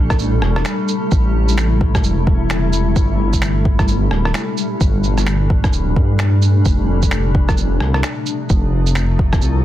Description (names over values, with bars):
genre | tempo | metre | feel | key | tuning
future garage | 130 BPM | 4/4 | swing 61% on 16ths | G dorian | A4 = 443 Hz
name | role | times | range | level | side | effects
granular cloud pad | sustained chords | 0.0-9.6 s | Bb2 to A4 | -21 LUFS | left 2 dB | built-in reverb, vintage 12-bit sampler grit, sidechain pumping
dark detuned saw bass | bass | 0.0-9.6 s | D1 to G2 | -16 LUFS | equal | sidechain pumping
electronic kick drum | drums | 0.1-9.4 s | none | -16 LUFS | equal | none
electronic rim click, shaker and finger snaps | drums | 0.1-9.5 s | none | -23 LUFS | right 1 dB | overdrive, soft clipping on snare
room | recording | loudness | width
little or no reverb | dense, heavily limited modern master | -14 LUFS | side -13 dB against mid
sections
0.0-9.6 A section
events
none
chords
0.0 Am7; 3.0 Gmadd9; 6.7 F